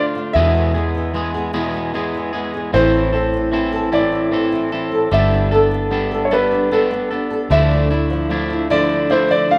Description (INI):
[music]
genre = six-eight pop ballad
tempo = 50 BPM (dotted quarters)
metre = 6/8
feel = straight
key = A harmonic minor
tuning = A4 = 440 Hz
[part]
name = warm grand piano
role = melody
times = 0.0-9.6 s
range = B4 to F5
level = -22 LUFS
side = equal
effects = none
[part]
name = flamenco guitar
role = accompaniment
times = 0.0-9.6 s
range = E2 to A4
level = -23 LUFS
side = equal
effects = double-tracked
[part]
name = electric guitar at the edge of break-up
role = arpeggios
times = 0.0-9.6 s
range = E2 to A4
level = -24 LUFS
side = equal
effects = warbly pitch drift
[part]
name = vintage muted fingered electric bass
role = bass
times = 0.0-9.6 s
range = G1 to E2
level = -23 LUFS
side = equal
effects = none
[sound]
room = moderate lush hall reverb, RT60 2.5 s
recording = rough home demo mix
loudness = -18 LUFS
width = mono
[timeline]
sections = 0.0-9.6 A section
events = none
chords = 0.4 E; 2.7 Am; 5.1 Gadd9; 7.5 Dmadd9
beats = | 0.36 1.55 | 2.74 3.93 | 5.12 6.32 | 7.51 8.70